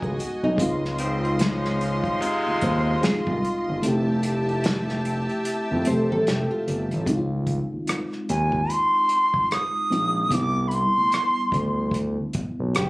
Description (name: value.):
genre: R&B, neo-soul.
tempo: 74 BPM.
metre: 4/4.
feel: swing 60% on 16ths.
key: unclear.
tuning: A4 = 439 Hz.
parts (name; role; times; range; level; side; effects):
nylon-string guitar; second line; 0.0-7.0, 12.8-12.9 s; D#4 to C5; -27 LUFS; equal; none.
FM electric piano with tremolo; accompaniment; 0.0-12.9 s; G3 to E5; -28 LUFS; equal; none.
rich studio string section; sustained chords; 0.0-7.0 s; F4 to C6; -30 LUFS; equal; none.
smooth gliding synth bass; bass; 0.0-12.9 s; F1 to F2; -26 LUFS; equal; none.
unplugged drum kit; drums; 0.0-12.9 s; hi-hat, kick drum, rim click, snare drum; -28 LUFS; equal; none.
bright saxophone section; stabs; 1.0-3.2 s; Ab2 to F4; -27 LUFS; equal; none.
reedy jazz flute; melody; 8.3-11.9 s; Ab5 to Eb6; -21 LUFS; equal; none.
room: light reverb.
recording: recorded on a phone in the room, club reverb, compression.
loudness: -21 LUFS.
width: side -22 dB against mid.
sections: 0.0-7.1 A section; 7.1-12.9 B section.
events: kick muted 3.8-7.1.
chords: 0.0 Emaj9 (rootless); 0.6 Dbmaj9; 3.8 Fmaj9; 7.1 Dbmaj9; 10.3 Cmaj9.